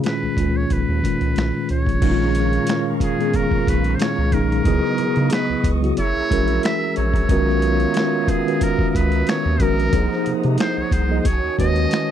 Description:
R&B, neo-soul; 91 BPM; 4/4; straight; A4 = 440 Hz
mellow tine electric piano; accompaniment; 0.0-12.1 s; A#2 to Eb5; -21 LUFS; left 1 dB; medium stereo tremolo
round analog bass; bass; 0.0-11.9 s; F#1 to C#3; -21 LUFS; equal
boom bap sampler-style drum kit; drums; 0.0-12.1 s; crash cymbal, finger snaps, hi-hat, kick drum, snare drum; -23 LUFS; equal
trumpet with metal mute; melody; 0.1-12.1 s; G#4 to E5; -25 LUFS; equal; slapback echo
tonewheel organ; sustained chords; 2.0-12.1 s; B3 to E6; -30 LUFS; right 1 dB; slow rotary speaker
warm trombone section; stabs; 2.0-12.1 s; B2 to F#4; -28 LUFS; right 13 dB
little or no reverb; dry, close 1970s-style studio recording; -17 LUFS; side -10 dB against mid
0.0-2.0 A section; 2.0-12.1 B section
0.0 C#13; 4.7 C#m9; 6.0 F#9; 7.3 Bmaj7; 9.9 Cm7b5; 11.2 B13
0.04 0.70 1.36 | 2.02 2.68 3.34 4.00 | 4.66 5.32 5.97 6.63 | 7.29 7.95 8.61 9.27 | 9.93 10.59 11.25 11.91

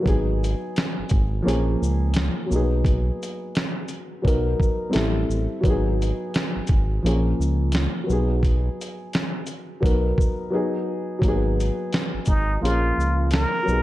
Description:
lo-fi hip hop; 86 BPM; 4/4; swing 60% on 16ths; G# dorian; A4 = 438 Hz
dark upright piano; accompaniment; 0.0-13.8 s; E#3 to A#4; -25 LUFS; left 1 dB; cassette tape, low-pass filter
smooth synth bass; bass; 0.1-13.8 s; G#1 to C#2; -23 LUFS; equal
dusty soul sampler-style drum kit; drums; 0.1-13.8 s; hi-hat, kick drum, shaker, snare drum; -24 LUFS; equal
trumpet with plunger mute; melody; 12.3-13.8 s; D#4 to A#4; -24 LUFS; equal; low-pass filter
light reverb, digital ambience; dark, warm production; -20 LUFS; side -16 dB against mid
0.0-11.2 A section; 11.2-13.8 A section
break 10.5-11.2
0.1 G#m7; 1.5 A#m7; 2.5 G#m7/B; 4.2 Bmaj7; 4.9 Am7; 5.6 G#m7; 7.0 A#m7; 8.1 G#m7/B; 9.8 Bmaj7; 10.5 G#m7; 12.6 A#m7
| 0.06 0.76 1.45 2.15 | 2.85 3.55 4.24 4.94 | 5.64 6.34 7.04 7.73 | 8.43 9.13 9.82 10.52 | 11.22 11.92 12.62 13.31

